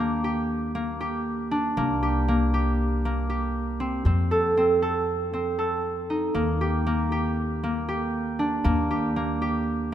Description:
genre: contemporary instrumental, chamber music in an uneven meter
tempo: 235 BPM (eighths)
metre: 9/8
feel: straight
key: Eb lydian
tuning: A4 = 440 Hz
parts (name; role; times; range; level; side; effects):
- concert harp; arpeggios; 0.0-9.9 s; Bb3 to A4; -24 LUFS; right 1 dB; none
- upright bass; bass; 0.0-9.9 s; C2 to F2; -28 LUFS; equal; none
room: moderate concert hall reverb, RT60 2.6 s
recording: none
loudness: -23 LUFS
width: side -11 dB against mid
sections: 0.0-9.9 A section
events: none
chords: 0.0 Ebmaj7; 1.8 C5; 4.1 F; 6.4 Ebmaj7

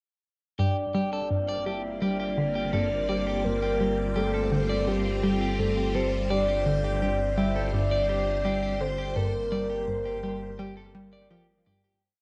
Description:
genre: ambient, sequencer-driven space music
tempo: 84 BPM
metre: 4/4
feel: straight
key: G minor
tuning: A4 = 439 Hz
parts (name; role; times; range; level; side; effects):
- soft octave-layered synth lead; melody; 0.6-11.3 s; G4 to E5; -32 LUFS; equal; chorus, analog delay
- phased string machine; sustained chords; 0.6-12.0 s; G3 to D5; -36 LUFS; equal; ensemble chorus, phaser
- electric guitar at the edge of break-up; arpeggios; 0.6-12.0 s; G4 to D5; -37 LUFS; equal; analog delay
- analog pluck; riff; 0.6-11.8 s; G2 to G3; -33 LUFS; equal; chorus, analog delay
- round analog bass; bass; 0.6-12.0 s; G1; -35 LUFS; equal; tube saturation
room: wet spring reverb, RT60 2.5 s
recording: echo-heavy mix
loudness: -27 LUFS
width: mono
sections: 0.6-12.0 A section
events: filter sweep on synth arpeggio sound 0.6-12.0; fade-out 8.2-12.0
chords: 0.6 Gmadd9

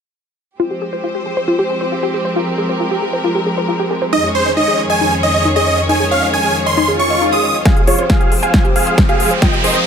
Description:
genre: uplifting trance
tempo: 136 BPM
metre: 4/4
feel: straight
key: F minor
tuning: A4 = 440 Hz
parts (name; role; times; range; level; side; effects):
- rich studio string section; sustained chords; 0.6-9.9 s; F2 to Db5; -19 LUFS; equal; vintage 12-bit sampler grit, sidechain pumping
- wide unison pluck; arpeggios; 0.6-9.8 s; Eb4 to Eb5; -19 LUFS; left 1 dB; sidechain pumping, ping-pong delay
- big supersaw lead; melody; 4.1-9.8 s; F4 to Eb6; -16 LUFS; right 1 dB; sidechain pumping, low-pass filter, ping-pong delay
- swell and riser; sound effects; 6.9-9.9 s; none; -21 LUFS; left 1 dB; none
- analog pluck; second line; 7.7-9.8 s; Db5 to Ab5; -25 LUFS; equal; none
- big-room dance drum kit; drums; 7.7-9.8 s; hi-hat, snare drum; -19 LUFS; left 1 dB; overdrive, low-pass filter on snare, low-pass filter on hats
- electronic kick drum; drums; 7.7-9.5 s; none; -14 LUFS; equal; overdrive
room: light reverb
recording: none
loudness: -13 LUFS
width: side -7 dB against mid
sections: 0.6-7.7 A section; 7.7-9.9 B section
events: filter sweep on synth arpeggio sound 0.6-7.7; swell 6.9-7.7; build-up 7.7-9.9; drum fill 7.7-9.9; riser 7.7-9.9; filter sweep on supersaw synth 7.7-9.9; filter sweep 7.7-9.9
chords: 0.6 Fmadd9; 4.1 Dbsus2/F; 7.7 Fmadd9

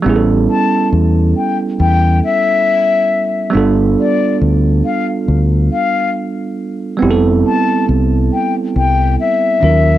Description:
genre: lo-fi hip hop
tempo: 69 BPM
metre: 4/4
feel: swing 56% on 16ths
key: unclear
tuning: A4 = 440 Hz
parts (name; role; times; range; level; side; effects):
- bell-like tine electric piano; accompaniment; 0.0-10.0 s; Eb3 to Bb4; -15 LUFS; right 4 dB; cassette tape, low-pass filter
- deep dub fingered electric bass; bass; 0.1-10.0 s; F1 to E2; -13 LUFS; left 1 dB; none
- breathy concert flute; melody; 0.5-10.0 s; D5 to A5; -16 LUFS; left 5 dB; low-pass filter
room: moderate studio reverb, RT60 0.5 s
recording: home recording on cassette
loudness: -11 LUFS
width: side -13 dB against mid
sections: 0.0-10.0 A section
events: none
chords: 0.1 A9; 3.5 G9; 7.0 Fmaj9#11

